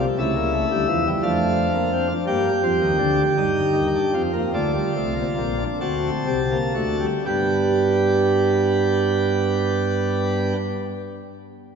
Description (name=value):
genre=classical, baroque-style 4-part fugue for pipe organ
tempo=38-58 BPM (dotted quarters)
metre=6/8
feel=straight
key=unclear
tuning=A4 = 438 Hz
part: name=pipe organ, plenum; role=solo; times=0.0-10.6 s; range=Bb1 to A5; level=-19 LUFS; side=right 1 dB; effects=none
room=wet church reverb, RT60 3.0 s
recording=nothing above 7.9 kHz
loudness=-19 LUFS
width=side -6 dB against mid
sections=0.0-7.3 A section; 7.3-11.8 B section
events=slowing down 1.2-7.3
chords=0.2 A/C#; 1.2 Dm/F; 2.3 Gm; 3.4 Cm; 4.5 Gm; 5.8 D7; 7.3 G